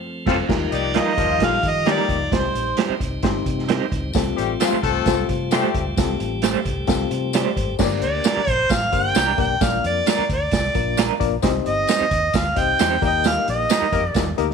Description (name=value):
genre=uptempo 1960s-style soul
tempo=132 BPM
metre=4/4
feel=straight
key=unclear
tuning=A4 = 440 Hz
part: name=tonewheel organ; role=sustained chords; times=0.0-7.8 s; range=F3 to G4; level=-30 LUFS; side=equal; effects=stopped rotary speaker
part: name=warm horn section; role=second line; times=0.3-5.8, 13.9-14.5 s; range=F3 to Bb4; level=-24 LUFS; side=left 13 dB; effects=none
part: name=barky reed electric piano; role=accompaniment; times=0.3-14.5 s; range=Bb3 to Eb5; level=-26 LUFS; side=left 17 dB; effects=fast tremolo
part: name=electric guitar through a small old amp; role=stabs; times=0.3-13.9 s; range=G3 to C5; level=-26 LUFS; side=right 10 dB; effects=tremolo
part: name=vintage muted fingered electric bass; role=bass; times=0.3-14.5 s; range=F1 to Eb3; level=-27 LUFS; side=left 1 dB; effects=none
part: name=vintage drum kit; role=drums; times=0.3-14.5 s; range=crash cymbal, hi-hat, kick drum, snare drum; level=-23 LUFS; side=right 4 dB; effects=none
part: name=mellow harmonica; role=melody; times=0.7-2.8, 8.0-14.4 s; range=C5 to G5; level=-21 LUFS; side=right 1 dB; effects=none
part: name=tambourine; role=percussion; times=4.1-14.3 s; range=none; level=-31 LUFS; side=left 17 dB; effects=none
room=moderate echo chamber reverb, RT60 1.2 s, studio reverb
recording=1960s-style stereo with parts hard left and right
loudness=-18 LUFS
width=side -6 dB against mid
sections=0.5-7.8 A section; 7.8-14.5 B section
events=band accent 0.0-0.5, 13.2-14.5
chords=0.5 Ebadd9; 2.3 Cm; 4.1 Fadd9; 7.8 Gm; 9.6 Bb; 11.4 Cm; 13.0 Eb